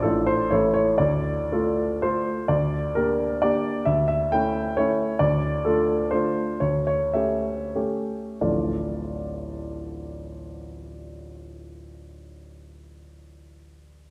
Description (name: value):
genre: classical, romantic triple-time dance for piano with dotted rhythms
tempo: 84-143 BPM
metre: 3/4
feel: rubato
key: D minor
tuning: A4 = 440 Hz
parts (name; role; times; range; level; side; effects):
- clear grand piano; solo; 0.0-14.1 s; D1 to G5; -25 LUFS; equal; none
room: moderate concert hall reverb, RT60 2.1 s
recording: none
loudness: -24 LUFS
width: mono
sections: 0.0-2.5 A section; 2.5-8.4 B section; 8.4-12.2 C section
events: slowing down 4.6-8.4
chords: 0.0 Dm/A; 0.5 A; 1.0 Dm; 2.5 Gm/D; 3.9 A7/D; 5.2 Dm; 6.6 A7/D; 8.4 Dm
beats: 0.03 0.51 | 0.99 1.50 2.01 | 2.49 2.96 3.43 | 3.87 4.32 4.77 | 5.20 5.64 6.11 | 6.61 7.15 7.75 | 8.42 9.04 9.67 | 10.28 10.91 11.56